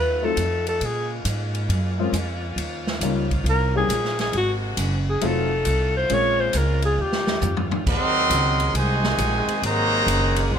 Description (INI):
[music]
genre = jazz, big band swing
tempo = 136 BPM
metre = 4/4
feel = swing 66% on 8ths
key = unclear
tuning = A4 = 440 Hz
[part]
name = breathy alto saxophone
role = melody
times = 0.0-7.7 s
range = Gb4 to Db5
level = -23 LUFS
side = left 1 dB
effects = none
[part]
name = bright saxophone section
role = sustained chords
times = 0.0-10.6 s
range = C3 to Ab4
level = -32 LUFS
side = left 2 dB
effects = none
[part]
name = upright bass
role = bass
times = 0.0-10.6 s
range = F1 to Bb2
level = -24 LUFS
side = right 1 dB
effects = none
[part]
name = dark baby grand piano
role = accompaniment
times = 0.2-7.0 s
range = Gb3 to G4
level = -26 LUFS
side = left 5 dB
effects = none
[part]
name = swinging big-band drum kit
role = drums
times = 0.4-10.4 s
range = crash cymbal, hi-hat, kick drum, ride cymbal, snare drum, toms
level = -29 LUFS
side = equal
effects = none
[part]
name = warm trumpet section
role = melody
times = 7.9-10.6 s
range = Gb4 to C6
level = -21 LUFS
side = right 1 dB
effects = none
[part]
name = clear trombone section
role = second line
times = 7.9-10.6 s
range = C3 to C4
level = -26 LUFS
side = right 2 dB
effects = none
[sound]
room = little or no reverb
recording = none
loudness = -20 LUFS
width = side -8 dB against mid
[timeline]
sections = 0.0-7.9 A section; 7.9-10.6 B section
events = alto saxophone solo 0.0-7.9; drum fill 7.0-7.9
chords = 0.0 F7b9; 0.8 Bbm7; 2.6 Eb9; 4.3 Ab9; 5.2 F7b9; 6.1 Bbm7; 7.0 Eb9; 7.9 Ab9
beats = 0.37 | 0.81 1.25 1.69 2.13 | 2.57 3.01 3.45 3.90 | 4.33 4.78 5.22 5.66 | 6.10 6.54 6.98 7.42 | 7.87 8.31 8.75 9.19 | 9.63 10.08 10.52